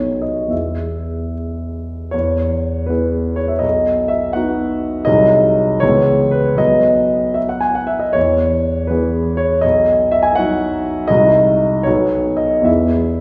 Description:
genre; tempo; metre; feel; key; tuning
classical, romantic character piece for solo piano; 70-88 BPM (dotted quarters); 6/8; rubato; E major; A4 = 439 Hz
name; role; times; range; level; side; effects
warm concert grand piano; solo; 0.0-13.2 s; B1 to G#5; -16 LUFS; equal; none
room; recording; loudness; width
wet recital hall reverb, RT60 1.4 s; heard from further back in the room; -16 LUFS; mono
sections
0.0-2.1 A section; 2.1-13.2 A section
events
none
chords
0.0 B; 0.5 E; 3.6 B; 5.1 G#7/B#; 5.8 C#m7; 6.6 B; 8.2 E; 9.6 B; 11.1 G#7/B#; 11.9 B; 12.7 E

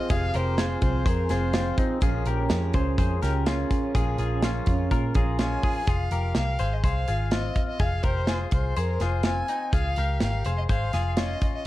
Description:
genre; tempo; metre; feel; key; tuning
jangly indie pop; 125 BPM; 4/4; straight; F minor; A4 = 439 Hz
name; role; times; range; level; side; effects
warm violin; melody; 0.0-1.8, 5.4-11.7 s; Bb4 to Ab5; -31 LUFS; left 1 dB; slapback echo, plate reverb
overdriven combo organ; accompaniment; 0.0-5.9 s; C4 to Bb5; -34 LUFS; right 3 dB; plate reverb
picked steel-string acoustic guitar; accompaniment; 0.0-6.4 s; F2 to F4; -33 LUFS; right 7 dB; plate reverb
direct-recorded clean electric guitar; arpeggios; 0.0-11.6 s; C4 to C5; -32 LUFS; left 6 dB; analog chorus, plate reverb
vintage muted picked electric bass; bass; 0.1-11.3 s; F1 to Bb2; -26 LUFS; equal; none
modern studio drum kit; drums; 0.1-11.5 s; hi-hat, kick drum, snare drum; -26 LUFS; equal; none
room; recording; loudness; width
light reverb; dark, warm production; -22 LUFS; side -16 dB against mid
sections
0.0-5.9 A section; 5.9-11.7 B section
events
transistor combo organ fill 4.9-5.9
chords
0.0 Fm; 2.0 Bbm7; 5.9 Fm; 9.7 Dbmaj7

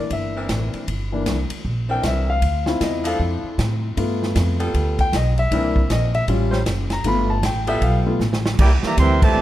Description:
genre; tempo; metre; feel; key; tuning
jazz, big band swing; 156 BPM; 4/4; swing 64% on 8ths; C mixolydian; A4 = 438 Hz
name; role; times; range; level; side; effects
warm concert grand piano; accompaniment; 0.0-8.2 s; E3 to B5; -23 LUFS; left 3 dB; none
upright bass; bass; 0.1-9.4 s; F#1 to A2; -21 LUFS; equal; none
swinging big-band drum kit; drums; 0.1-9.3 s; crash cymbal, hi-hat, kick drum, ride cymbal, snare drum; -24 LUFS; right 1 dB; none
warm saxophone section; sustained chords; 0.4-9.4 s; E3 to B#4; -28 LUFS; equal; none
mellow trumpet section; melody; 8.6-9.4 s; E4 to C6; -21 LUFS; right 1 dB; none
clear trombone section; second line; 8.6-9.4 s; Bb2 to G4; -22 LUFS; right 4 dB; none
room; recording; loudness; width
light reverb; dark, warm production; -18 LUFS; side -14 dB against mid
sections
0.0-8.6 A section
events
grand piano solo 0.0-8.6; drum fill 8.2-8.6; band accent 9.2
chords
0.0 C9; 2.4 Dm7; 4.0 G9; 5.5 C9; 6.3 A7alt; 7.0 G9; 8.6 C9

